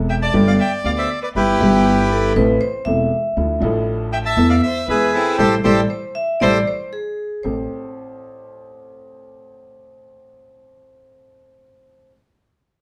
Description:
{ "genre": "tango", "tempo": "118 BPM", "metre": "4/4", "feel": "rubato", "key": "A minor", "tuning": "A4 = 443 Hz", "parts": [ { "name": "clear upright piano", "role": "accompaniment", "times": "0.0-12.1 s", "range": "E1 to A4", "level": "-21 LUFS", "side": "equal", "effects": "none" }, { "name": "upright bass", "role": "bass", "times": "0.0-7.7 s", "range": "E1 to E2", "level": "-26 LUFS", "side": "equal", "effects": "none" }, { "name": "bandoneon", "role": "melody", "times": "0.1-6.6 s", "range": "C4 to A5", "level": "-21 LUFS", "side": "equal", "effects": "none" }, { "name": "rich violin", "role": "second line", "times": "0.1-6.6 s", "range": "E4 to E5", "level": "-28 LUFS", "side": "equal", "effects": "none" }, { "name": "vibraphone with medium hard mallets", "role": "second line", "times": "1.9-12.1 s", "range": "G4 to E5", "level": "-26 LUFS", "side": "equal", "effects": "none" } ], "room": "wet studio reverb, RT60 1.0 s", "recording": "band playing live in one room", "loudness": "-18 LUFS", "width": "mono", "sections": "0.0-7.4 A section; 7.4-11.5 B section", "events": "band accent 5.4-7.4", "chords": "0.3 Gadd9; 1.4 Em/G; 2.4 Am; 3.4 Dmadd9; 4.4 Esus4; 4.9 E; 5.4 Am7; 6.9 N.C.; 7.4 Am7" }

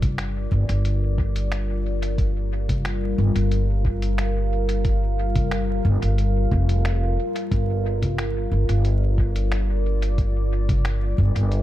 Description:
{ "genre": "ambient dub", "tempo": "90 BPM", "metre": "4/4", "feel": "straight", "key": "G minor", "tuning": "A4 = 437 Hz", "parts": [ { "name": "deep dark ambient pad", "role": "sustained chords", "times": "0.0-11.6 s", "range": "G3 to F5", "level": "-28 LUFS", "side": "left 1 dB", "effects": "chorus, built-in reverb" }, { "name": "upright bass", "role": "bass", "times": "0.0-11.6 s", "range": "F1 to G1", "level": "-22 LUFS", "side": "equal", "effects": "tube saturation" }, { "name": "electronic kick drum", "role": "drums", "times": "0.0-11.3 s", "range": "none", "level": "-24 LUFS", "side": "equal", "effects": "small room ambience" }, { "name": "lo-fi sampler-style drum kit", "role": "drums", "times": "0.0-11.6 s", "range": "congas, finger snaps, hi-hat", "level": "-32 LUFS", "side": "left 1 dB", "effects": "small room ambience, dub echo" } ], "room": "digital ambience", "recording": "echo-heavy mix, vinyl crackle", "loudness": "-20 LUFS", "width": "side -14 dB against mid", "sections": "0.0-11.6 A section", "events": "none", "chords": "0.0 Gm7" }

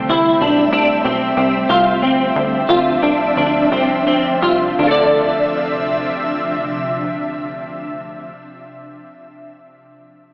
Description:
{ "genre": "dream pop", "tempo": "82-96 BPM", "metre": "4/4", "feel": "straight", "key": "D minor", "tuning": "A4 = 442 Hz", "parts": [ { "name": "ethereal airy pad", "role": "sustained chords", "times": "0.0-8.3 s", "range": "C3 to E5", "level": "-19 LUFS", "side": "equal", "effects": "ensemble chorus, built-in reverb" }, { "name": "semi-hollow electric guitar", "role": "arpeggios", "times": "0.0-8.5 s", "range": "C4 to D5", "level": "-15 LUFS", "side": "equal", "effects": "ensemble chorus, tape echo" }, { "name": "plucky analog bass", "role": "bass", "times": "0.0-8.3 s", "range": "B1 to D2", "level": "-26 LUFS", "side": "equal", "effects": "none" } ], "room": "wet plate reverb, RT60 3.0 s", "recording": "small speaker sound", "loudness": "-13 LUFS", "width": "side -26 dB against mid", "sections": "0.0-4.8 A section; 4.8-7.7 B section", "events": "slowing down 0.0-4.8", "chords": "0.0 C6; 2.0 Dm9" }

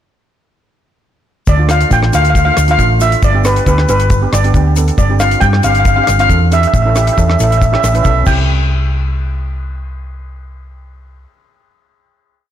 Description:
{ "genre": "calypso", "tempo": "137 BPM", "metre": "4/4", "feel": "straight", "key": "C major", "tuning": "A4 = 445 Hz", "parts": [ { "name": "steel pan", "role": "melody", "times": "1.5-11.2 s", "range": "B4 to G5", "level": "-14 LUFS", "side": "equal", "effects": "none" }, { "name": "hollow-body short-scale fingered electric bass", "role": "bass", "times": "1.5-11.2 s", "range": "G1 to G2", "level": "-13 LUFS", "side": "equal", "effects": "none" }, { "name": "deep reggae drum kit", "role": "drums", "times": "1.5-8.4 s", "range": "crash cymbal, hi-hat, kick drum, rim click", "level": "-17 LUFS", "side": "equal", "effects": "soft clipping on snare" }, { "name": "egg shaker", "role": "percussion", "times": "1.5-8.7 s", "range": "none", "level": "-29 LUFS", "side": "left 7 dB", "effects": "none" }, { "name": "steel pan", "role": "accompaniment", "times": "1.6-11.3 s", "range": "A3 to B4", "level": "-21 LUFS", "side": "right 6 dB", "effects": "none" } ], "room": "light reverb", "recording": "blown-out, overdriven recording, overdrive", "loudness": "-9 LUFS", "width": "side -10 dB against mid", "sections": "1.5-8.5 verse; 8.5-12.0 final hit", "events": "none", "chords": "1.5 Dm; 3.2 G; 5.0 Csus2/G; 6.7 A; 8.3 C" }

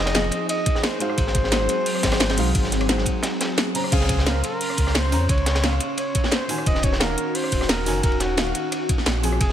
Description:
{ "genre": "liquid drum and bass", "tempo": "175 BPM", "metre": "4/4", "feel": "straight", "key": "Eb dorian", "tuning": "A4 = 440 Hz", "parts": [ { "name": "mellow flugelhorn", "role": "melody", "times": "0.0-9.5 s", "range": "Gb4 to Eb5", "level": "-28 LUFS", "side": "equal", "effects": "vintage 12-bit sampler grit, ping-pong delay" }, { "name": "felt-muted upright piano", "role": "accompaniment", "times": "0.0-9.5 s", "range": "Db3 to Bb5", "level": "-29 LUFS", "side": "left 1 dB", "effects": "dub echo" }, { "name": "airy breathy pad", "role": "sustained chords", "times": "0.0-9.5 s", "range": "Gb3 to C6", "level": "-28 LUFS", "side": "equal", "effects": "chorus, sidechain pumping" }, { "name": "sub bass with octave", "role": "bass", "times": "0.0-9.5 s", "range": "Eb1 to F2", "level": "-24 LUFS", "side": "equal", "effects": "none" }, { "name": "crunchy breakbeat drum kit", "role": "drums", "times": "0.1-9.5 s", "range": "hi-hat, ride cymbal, snare drum", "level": "-28 LUFS", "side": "equal", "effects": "high-pass filter on cymbals, high-pass filter on hats, high-pass filter on snare, high-pass filter on room" }, { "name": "drum and bass drum kit", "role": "drums", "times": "0.1-9.5 s", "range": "crash cymbal, hi-hat, rim click, snare drum", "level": "-25 LUFS", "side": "equal", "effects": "none" }, { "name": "electronic kick drum", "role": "drums", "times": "0.7-9.5 s", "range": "none", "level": "-23 LUFS", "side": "equal", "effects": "none" } ], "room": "light reverb, studio reverb", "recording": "none", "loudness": "-19 LUFS", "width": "side -10 dB against mid", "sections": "0.0-3.9 A section; 3.9-9.5 A section", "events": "drop 0.0-3.9, 3.9-9.5", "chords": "0.0 Fm7; 1.2 Ab7; 3.9 Dbmaj7; 6.7 Ebm9" }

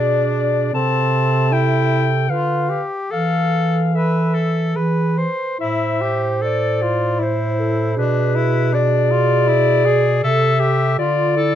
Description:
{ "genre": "classical, lyrical piece for single-reed quartet", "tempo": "70-81 BPM", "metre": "3/4", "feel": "rubato", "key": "A minor", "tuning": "A4 = 440 Hz", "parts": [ { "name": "warm clarinet", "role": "melody", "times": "0.0-11.6 s", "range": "B4 to A5", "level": "-21 LUFS", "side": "left 7 dB", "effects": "none" }, { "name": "warm clarinet", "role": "second line", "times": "0.0-11.6 s", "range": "E4 to C5", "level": "-24 LUFS", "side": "right 8 dB", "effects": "none" }, { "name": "clear tenor saxophone", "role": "accompaniment", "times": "0.0-11.6 s", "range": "C4 to C5", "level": "-22 LUFS", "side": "left 2 dB", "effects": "none" }, { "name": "dark bass clarinet", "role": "bass", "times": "0.0-11.6 s", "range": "A2 to E3", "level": "-19 LUFS", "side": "right 2 dB", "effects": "none" } ], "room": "light reverb", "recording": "dark, warm production", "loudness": "-15 LUFS", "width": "side -10 dB against mid", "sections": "0.0-11.6 A section", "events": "none", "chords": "0.0 Bm6; 0.7 Am/C; 2.3 Bdim/D; 3.1 Esus4; 4.8 E; 5.6 Am; 8.0 Bdim7; 10.2 Am/C; 11.0 Dmadd9" }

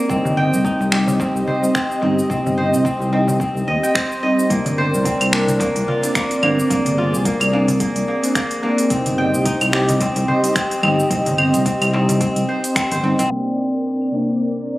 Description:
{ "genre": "organic downtempo", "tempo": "109 BPM", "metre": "4/4", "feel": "swing 56% on 16ths", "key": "C minor", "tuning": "A4 = 440 Hz", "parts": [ { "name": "deep mellow chord stab", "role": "accompaniment", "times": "0.0-14.8 s", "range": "C3 to Eb4", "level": "-23 LUFS", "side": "equal", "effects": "chorus, phaser, sidechain pumping, ping-pong delay" }, { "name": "warm analog pad", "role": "sustained chords", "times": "0.0-14.8 s", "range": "C4 to Eb5", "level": "-22 LUFS", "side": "right 1 dB", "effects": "chorus, sidechain pumping" }, { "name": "kora", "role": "arpeggios", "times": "0.0-14.8 s", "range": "Bb3 to G5", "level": "-22 LUFS", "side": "equal", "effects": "ping-pong delay" }, { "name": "smooth gliding synth bass", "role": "bass", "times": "0.1-13.3 s", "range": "G1 to Eb2", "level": "-21 LUFS", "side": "equal", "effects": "none" }, { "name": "electronic kick drum", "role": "drums", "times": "0.1-12.9 s", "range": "none", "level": "-26 LUFS", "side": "equal", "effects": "overdrive, studio ambience" }, { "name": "organic electronic drum kit", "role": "drums", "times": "0.1-14.7 s", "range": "cabasa, claves, finger snaps, hi-hat", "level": "-23 LUFS", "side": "equal", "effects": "overdrive, low-pass filter on perc, studio ambience, low-pass filter on snare, low-pass filter on hats" }, { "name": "darbuka", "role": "percussion", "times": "0.3-12.2 s", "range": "none", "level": "-29 LUFS", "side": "equal", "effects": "none" } ], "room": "moderate scoring stage reverb, RT60 1.6 s, digital ambience", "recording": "recorded on a phone in the room, studio reverb, compression, low-pass filter", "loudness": "-16 LUFS", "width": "side -17 dB against mid", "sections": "0.0-13.3 A section; 13.3-14.8 B section", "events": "filter sweep 13.3-14.8", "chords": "0.1 Cm; 4.5 Bbadd9; 8.9 Cm; 13.3 Bbadd9/C" }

